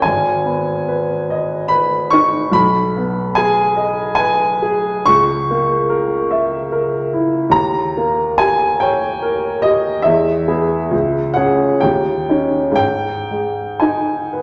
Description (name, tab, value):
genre	classical, romantic nocturne for solo piano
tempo	57-74 BPM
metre	3/4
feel	rubato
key	G# minor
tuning	A4 = 440 Hz
part	warm baby grand piano	solo	0.0-14.4 s	G#1 to C#6	-16 LUFS	equal	none
room	wet recital hall reverb, RT60 1.8 s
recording	none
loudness	-16 LUFS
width	mono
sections	0.0-14.4 A section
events	none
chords	0.0 G#m; 2.5 G#m/B; 5.1 A#dim/C#; 7.5 D#7; 10.1 E; 10.9 C#madd11; 11.8 D#7; 12.8 G#5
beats	| 0.03 0.85 1.68 | 2.52 3.35 4.18 | 5.07 5.89 6.71 | 7.54 8.40 9.23 | 10.06 10.93 11.84 | 12.80 13.83